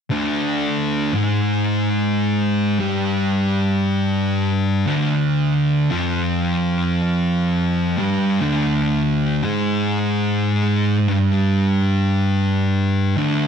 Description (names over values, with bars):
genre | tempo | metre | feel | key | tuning
metal | free time | none | none | unclear | A4 = 439 Hz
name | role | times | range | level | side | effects
thick fuzz guitar | riff | 0.1-13.5 s | D2 to G#3 | -19 LUFS | left 4 dB | distortion
thick fuzz guitar | riff | 0.1-13.5 s | D2 to G#3 | -21 LUFS | right 8 dB | distortion
room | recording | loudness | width
wet large studio reverb, RT60 0.9 s | none | -17 LUFS | side -7 dB against mid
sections
0.1-13.5 A section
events
none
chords
0.1 Dm